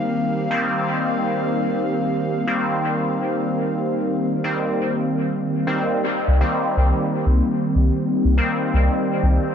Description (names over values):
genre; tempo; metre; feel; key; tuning
techno; 122 BPM; 4/4; straight; C minor; A4 = 440 Hz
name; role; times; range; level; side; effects
airy breathy pad; sustained chords; 0.0-6.0 s; Eb4 to F5; -29 LUFS; equal; chorus
resonant sweep polysynth; stabs; 0.0-9.5 s; Eb3 to C4; -20 LUFS; equal; chorus, phaser, dub echo
soft dub sub bass; bass; 6.3-9.4 s; C2; -17 LUFS; equal; none
room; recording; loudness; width
moderate spring reverb, RT60 1.9 s; dark, warm production, nothing above 7.6 kHz; -18 LUFS; side -8 dB against mid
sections
0.0-6.0 A section; 6.0-9.5 B section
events
none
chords
0.0 Cm7